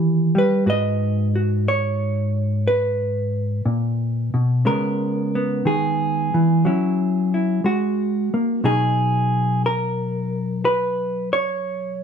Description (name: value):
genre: solo jazz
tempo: 60 BPM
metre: 4/4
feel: swing 69% on 8ths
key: B major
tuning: A4 = 440 Hz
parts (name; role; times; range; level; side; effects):
- hollow-body jazz guitar; solo; 0.0-12.0 s; G#2 to D#5; -18 LUFS; equal; none
room: moderate studio reverb, RT60 0.9 s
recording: minimal, uncompressed stereo recording, faint mains hum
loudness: -18 LUFS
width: side -7 dB against mid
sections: 0.0-12.0 A section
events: none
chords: 0.0 D#; 0.7 G#m9; 4.7 C#m7; 6.6 F#7; 8.6 B69